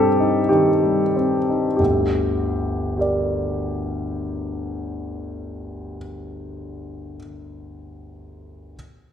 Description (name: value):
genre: classical, romantic character piece for solo piano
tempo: 50 BPM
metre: 2/4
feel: rubato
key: G minor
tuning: A4 = 442 Hz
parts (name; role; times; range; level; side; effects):
- clear grand piano; solo; 0.0-8.8 s; G1 to D5; -20 LUFS; left 1 dB; none
room: wet recital hall reverb, RT60 1.4 s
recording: heard from further back in the room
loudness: -19 LUFS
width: side -8 dB against mid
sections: 0.0-1.8 A section; 1.8-6.5 B section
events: slowing down 0.0-1.8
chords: 0.0 Cm/G; 1.8 Gm